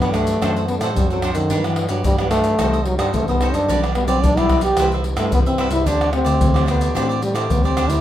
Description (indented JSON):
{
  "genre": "samba and choro",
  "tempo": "110 BPM",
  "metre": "4/4",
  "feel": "straight",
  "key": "G major",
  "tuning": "A4 = 440 Hz",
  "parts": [
    { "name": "breathy trombone", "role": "melody", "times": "0.0-8.0 s", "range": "Eb3 to G4", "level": "-20 LUFS", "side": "equal", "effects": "none" },
    { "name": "cavaquinho", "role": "accompaniment", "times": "0.0-8.0 s", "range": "D4 to F#5", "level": "-27 LUFS", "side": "right 5 dB", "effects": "none" },
    { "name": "nylon-string guitar", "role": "accompaniment", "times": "0.0-8.0 s", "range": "G2 to A4", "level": "-28 LUFS", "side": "left 1 dB", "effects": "none" },
    { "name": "bell-like tine electric piano", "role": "bass", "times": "0.0-8.0 s", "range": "B1 to A2", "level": "-22 LUFS", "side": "equal", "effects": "none" },
    { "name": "maracas, pandeiro, tamborim and surdo", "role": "percussion", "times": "0.0-8.0 s", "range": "none", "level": "-22 LUFS", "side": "equal", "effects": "none" }
  ],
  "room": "moderate studio reverb, RT60 0.6 s",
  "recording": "minimal, uncompressed stereo recording",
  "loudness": "-16 LUFS",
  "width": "side -12 dB against mid",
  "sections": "0.0-8.0 A section",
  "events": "none",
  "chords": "0.4 D7/F#; 1.5 Gmaj7; 2.6 Cm6; 3.7 Gmaj7/B; 4.8 Cmaj7; 5.9 D7sus4"
}